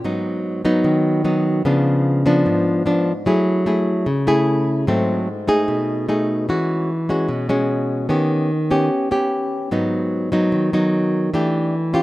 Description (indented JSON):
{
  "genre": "bossa nova",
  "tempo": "149 BPM",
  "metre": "4/4",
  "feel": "straight",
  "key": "E major from 6.5 s",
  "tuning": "A4 = 438 Hz",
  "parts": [
    { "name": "nylon-string guitar", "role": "solo", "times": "0.0-12.0 s", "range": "G#2 to G#4", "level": "-16 LUFS", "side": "equal", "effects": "none" }
  ],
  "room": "moderate plate reverb, RT60 3.5 s",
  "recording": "none",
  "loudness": "-17 LUFS",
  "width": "side -17 dB against mid",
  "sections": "0.0-6.5 A section; 6.5-12.0 B section",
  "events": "none",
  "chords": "0.0 G#m7; 1.6 C#7b9; 3.3 F#m9; 4.9 G#7b9; 5.7 B6; 6.5 E69; 8.1 D#7b13; 9.7 G#m7; 11.3 Em7"
}